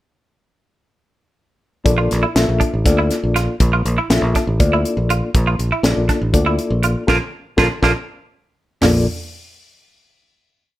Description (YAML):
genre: electric jazz fusion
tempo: 241 BPM (eighths)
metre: 7/8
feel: straight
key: Bb lydian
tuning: A4 = 440 Hz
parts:
  - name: mellow reed electric piano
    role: accompaniment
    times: 1.8-9.1 s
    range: Bb3 to E5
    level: -20 LUFS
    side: left 2 dB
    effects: fast tremolo
  - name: fingered electric bass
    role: bass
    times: 1.9-9.1 s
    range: A1 to D2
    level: -18 LUFS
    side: equal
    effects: none
  - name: tight funk drum kit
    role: drums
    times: 1.9-8.9 s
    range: hi-hat, kick drum, snare drum, toms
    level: -18 LUFS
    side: equal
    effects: none
  - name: semi-hollow electric guitar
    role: stabs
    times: 2.0-9.0 s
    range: Bb3 to F4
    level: -21 LUFS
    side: right 4 dB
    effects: wide subtle chorus
room: light reverb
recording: none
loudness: -15 LUFS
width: side -15 dB against mid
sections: 1.9-8.8 groove; 8.8-10.6 final chord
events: band accent 7.1-8.8; drum fill 8.1-8.8; reed electric piano fill 8.1-8.8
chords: 1.9 Bbmaj7